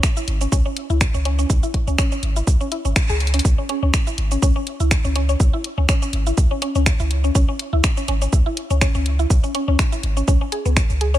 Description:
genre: minimal techno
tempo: 123 BPM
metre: 4/4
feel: swing 55% on 16ths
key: C# minor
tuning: A4 = 440 Hz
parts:
  - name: electronic kick drum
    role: drums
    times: 0.0-10.9 s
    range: none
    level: -18 LUFS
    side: equal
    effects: none
  - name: house drum kit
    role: drums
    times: 0.0-11.2 s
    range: finger snaps, hi-hat, shaker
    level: -24 LUFS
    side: right 1 dB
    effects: none
  - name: mallet-like synth pluck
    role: riff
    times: 0.2-11.2 s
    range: B3 to G#4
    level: -25 LUFS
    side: left 1 dB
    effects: analog chorus, sidechain pumping, dub echo
  - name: punchy sub bass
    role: bass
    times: 0.3-11.2 s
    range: G#1 to C#2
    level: -19 LUFS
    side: equal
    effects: sidechain pumping
room: digital ambience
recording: none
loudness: -17 LUFS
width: side -13 dB against mid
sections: 0.0-3.4 A section; 3.4-11.2 B section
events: band accent 3.0; drum fill 3.2; drop 3.4-11.2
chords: 0.0 C#5; 3.4 N.C.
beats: 0.03 0.52 1.01 | 1.50 1.99 2.47 2.96 | 3.45 3.94 4.42 4.91 | 5.40 5.89 6.38 6.86 | 7.35 7.84 8.33 8.81 | 9.30 9.79 10.28 10.77

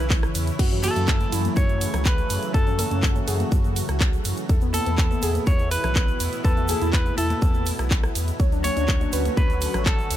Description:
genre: progressive house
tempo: 123 BPM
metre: 4/4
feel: straight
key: F# minor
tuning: A4 = 441 Hz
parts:
  - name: clean electric guitar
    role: melody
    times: 0.0-10.2 s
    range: A4 to C#5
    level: -29 LUFS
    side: equal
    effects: ping-pong delay
  - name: lush unison pad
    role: sustained chords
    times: 0.0-10.2 s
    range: A2 to F#4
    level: -30 LUFS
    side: equal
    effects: chorus, phaser, sidechain pumping
  - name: soft round pluck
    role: arpeggios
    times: 0.0-10.2 s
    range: F#3 to C#5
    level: -31 LUFS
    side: equal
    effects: chorus, sidechain pumping, ping-pong delay
  - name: saturated sub bass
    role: bass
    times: 0.0-10.2 s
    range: A1 to F#2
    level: -26 LUFS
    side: equal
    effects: tube saturation, sidechain pumping
  - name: electronic kick drum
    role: drums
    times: 0.1-10.0 s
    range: none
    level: -21 LUFS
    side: equal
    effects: none
  - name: pop drum kit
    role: drums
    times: 0.1-10.2 s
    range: crash cymbal, handclaps, hi-hat, ride cymbal, rim click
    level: -30 LUFS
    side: right 1 dB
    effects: none
  - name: egg shaker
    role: percussion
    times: 0.1-10.2 s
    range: none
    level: -38 LUFS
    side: right 4 dB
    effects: none
  - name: congas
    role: percussion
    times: 0.8-9.8 s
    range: none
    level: -36 LUFS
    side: left 1 dB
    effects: sidechain pumping on perc
room: little or no reverb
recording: none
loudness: -20 LUFS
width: side -12 dB against mid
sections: 0.0-10.2 A section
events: none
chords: 0.0 C#m7; 0.6 F#m7; 4.5 Esus4; 8.4 Dmaj7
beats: 0.10 | 0.59 1.08 1.57 2.06 | 2.54 3.03 3.52 4.01 | 4.50 4.98 5.47 5.96 | 6.45 6.93 7.42 7.91 | 8.40 8.88 9.37 9.86

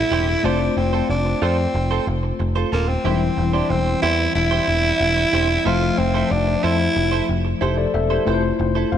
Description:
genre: pop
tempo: 92 BPM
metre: 4/4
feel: straight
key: unclear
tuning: A4 = 439 Hz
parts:
  - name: growling tenor saxophone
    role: melody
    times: 0.0-7.3 s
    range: Bb3 to F4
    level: -21 LUFS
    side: right 1 dB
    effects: ping-pong delay
  - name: tine electric piano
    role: accompaniment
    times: 0.0-9.0 s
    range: E3 to F5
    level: -23 LUFS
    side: left 6 dB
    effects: medium tremolo
  - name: picked electric bass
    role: bass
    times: 0.0-9.0 s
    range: Eb1 to F2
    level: -22 LUFS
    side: equal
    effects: none
  - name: direct-recorded clean electric guitar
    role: riff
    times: 0.1-9.0 s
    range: E4 to C5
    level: -27 LUFS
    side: right 8 dB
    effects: lush chorus
room: moderate lush hall reverb, RT60 3.0 s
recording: nothing above 10.6 kHz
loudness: -17 LUFS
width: side -9 dB against mid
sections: 0.0-8.3 A section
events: none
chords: 0.4 F; 3.1 C/E; 5.7 Fmaj7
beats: | 0.44 1.09 1.75 2.40 | 3.05 3.70 4.36 5.01 | 5.66 6.31 6.96 7.62 | 8.27 8.92

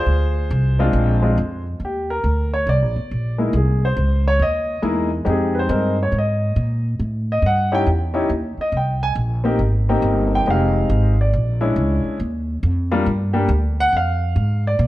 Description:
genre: jazz piano trio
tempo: 139 BPM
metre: 4/4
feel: swing 65% on 8ths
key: Eb major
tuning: A4 = 440 Hz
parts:
  - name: warm concert grand piano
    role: melody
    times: 0.0-14.9 s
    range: G3 to Ab5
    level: -20 LUFS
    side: left 1 dB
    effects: none
  - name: upright bass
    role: bass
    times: 0.0-14.9 s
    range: F1 to Bb2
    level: -19 LUFS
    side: equal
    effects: none
room: moderate large studio reverb, RT60 1.4 s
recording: none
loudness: -17 LUFS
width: side -16 dB against mid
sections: 0.0-1.8 A section; 1.8-14.9 B section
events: grand piano solo 1.8-14.9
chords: 0.1 Dm7b5; 0.9 Bb9; 1.8 Ebmaj7(no3); 3.5 Caug; 5.3 Fm9; 7.0 A7(no3); 8.7 Abmaj9; 10.5 Fm9; 11.3 Bb7#9; 12.2 Ebmaj9; 13.9 Fm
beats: | 0.07 0.51 0.94 1.37 | 1.81 2.24 2.67 3.11 | 3.54 3.97 4.41 4.84 | 5.27 5.71 6.14 6.57 | 7.00 7.44 7.87 8.30 | 8.74 9.17 9.60 10.03 | 10.47 10.90 11.33 11.77 | 12.20 12.63 13.06 13.50 | 13.93 14.36 14.80

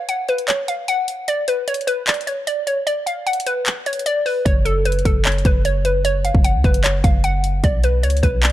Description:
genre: hip hop, trap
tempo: 151 BPM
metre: 4/4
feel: half-time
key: F# harmonic minor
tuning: A4 = 442 Hz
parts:
  - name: hollow square pluck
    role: melody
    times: 0.0-8.5 s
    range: A4 to F#5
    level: -20 LUFS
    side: equal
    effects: chorus
  - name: house drum kit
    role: drums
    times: 0.1-8.5 s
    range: handclaps, hi-hat, kick drum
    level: -19 LUFS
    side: equal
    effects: none
  - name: warm 808-style bass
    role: bass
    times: 4.5-8.5 s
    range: F#1 to C#2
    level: -19 LUFS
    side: equal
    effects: none
room: little or no reverb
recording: none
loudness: -16 LUFS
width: side -14 dB against mid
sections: 0.0-8.5 A section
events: break 0.0-4.5; kick muted 3.7-4.5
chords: 0.0 N.C.; 4.5 F#5; 7.6 Bmadd9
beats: 0.09 0.48 0.88 | 1.28 1.68 2.07 2.47 | 2.87 3.27 3.66 4.06 | 4.46 4.86 5.25 5.65 | 6.05 6.44 6.84 7.24 | 7.64 8.03 8.43

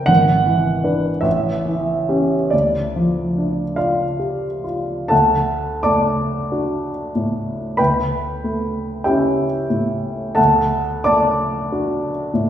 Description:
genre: classical, romantic nocturne for solo piano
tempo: 40-54 BPM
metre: 4/4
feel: rubato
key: D minor, D major from 5.1 s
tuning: A4 = 440 Hz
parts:
  - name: warm baby grand piano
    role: solo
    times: 0.0-12.5 s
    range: G#1 to D6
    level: -16 LUFS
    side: equal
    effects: none
room: wet recital hall reverb, RT60 1.4 s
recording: heard from further back in the room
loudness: -17 LUFS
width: side -10 dB against mid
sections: 0.0-5.1 A section; 5.1-12.5 B section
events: none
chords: 0.1 E7/G#; 1.3 A7; 2.5 Dm; 5.1 D; 7.8 A7/D; 10.4 D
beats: | 0.10 1.25 2.52 3.78 | 5.11 6.51 7.79 9.07 | 10.38 11.71

